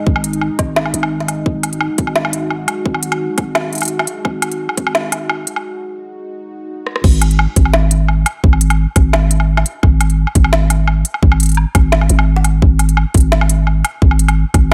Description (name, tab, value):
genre	half-time drum and bass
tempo	172 BPM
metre	4/4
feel	swing 53% on 16ths, half-time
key	unclear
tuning	A4 = 440 Hz
part	dark analog pad	sustained chords	0.0-7.0 s	G#3 to D#5	-26 LUFS	equal	chorus, sidechain pumping
part	growling 808-style bass	bass	0.1-14.7 s	G#1	-17 LUFS	equal	none
part	electronic kick drum	drums	0.1-4.8, 7.0-14.6 s	none	-14 LUFS	equal	none
part	organic electronic drum kit	drums	0.2-14.7 s	crash cymbal, hi-hat, rim click, snare drum, woodblock	-20 LUFS	equal	none
room	digital ambience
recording	high-pass filter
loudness	-14 LUFS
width	mono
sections	0.0-7.0 A section; 7.0-14.7 B section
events	build-up 0.0-7.0; break 5.6-7.0; drum fill 6.9; drop 7.0-14.7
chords	0.0 G#5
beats	| 0.07 0.41 0.76 1.11 | 1.46 1.81 2.16 2.51 | 2.86 3.21 3.55 3.90 | 4.25 4.60 4.95 5.30 | 5.65 6.00 6.34 6.69 | 7.04 7.39 7.74 8.09 | 8.44 8.79 9.13 9.48 | 9.83 10.18 10.53 10.88 | 11.23 11.58 11.93 12.28 | 12.62 12.97 13.32 13.67 | 14.02 14.37 14.72